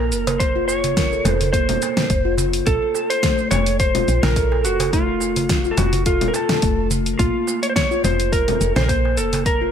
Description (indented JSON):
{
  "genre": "organic downtempo",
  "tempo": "106 BPM",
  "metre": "4/4",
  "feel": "swing 54% on 16ths",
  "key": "Bb harmonic minor",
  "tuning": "A4 = 442 Hz",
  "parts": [
    { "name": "electric slide guitar", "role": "melody", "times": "0.0-9.7 s", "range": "F4 to Db5", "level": "-22 LUFS", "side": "equal", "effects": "ping-pong delay" },
    { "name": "steel tongue drum", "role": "arpeggios", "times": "0.0-9.7 s", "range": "A3 to Bb4", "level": "-23 LUFS", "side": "equal", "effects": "tape echo" },
    { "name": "woody FM bass", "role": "bass", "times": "0.0-9.7 s", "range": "F1 to Bb1", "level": "-23 LUFS", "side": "equal", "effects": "sidechain pumping" },
    { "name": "deep house drum kit", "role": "drums", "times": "0.1-9.6 s", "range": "congas, hi-hat, shaker, snare drum", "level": "-24 LUFS", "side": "left 1 dB", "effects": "none" },
    { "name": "darbuka", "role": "percussion", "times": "0.3-9.4 s", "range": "none", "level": "-29 LUFS", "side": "right 3 dB", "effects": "none" },
    { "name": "electronic kick drum", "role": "drums", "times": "0.4-9.6 s", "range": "none", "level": "-22 LUFS", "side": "equal", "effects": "none" }
  ],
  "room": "light reverb, digital ambience",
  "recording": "none",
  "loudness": "-16 LUFS",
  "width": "side -8 dB against mid",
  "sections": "0.0-9.7 A section",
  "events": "none",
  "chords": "0.0 Bb5",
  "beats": "| 0.40 0.97 1.53 2.10 | 2.67 3.23 3.80 4.36 | 4.93 5.50 6.06 6.63 | 7.19 7.76 8.33 8.89 | 9.46"
}